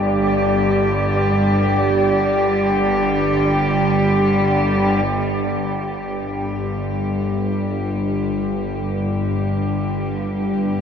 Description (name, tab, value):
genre	dark ambient drone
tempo	free time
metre	none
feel	none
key	unclear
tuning	A4 = 441 Hz
part	warm chamber cello section	sustained chords	0.0-10.8 s	D3 to G4	-19 LUFS	equal	none
part	bowed-like drone	drone	0.0-10.8 s	G1 to G2	-21 LUFS	left 1 dB	built-in reverb
part	wind-like tuned noise texture	texture	0.0-5.1 s	D5	-26 LUFS	right 2 dB	built-in reverb
room	wet huge ambient reverb, RT60 7.5 s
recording	worn, warbling old tape, cassette tape, warbly pitch drift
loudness	-17 LUFS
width	side -7 dB against mid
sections	0.0-5.1 A section; 5.1-10.8 B section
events	fade-in on cello section 5.1-10.8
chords	0.0 G5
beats	free time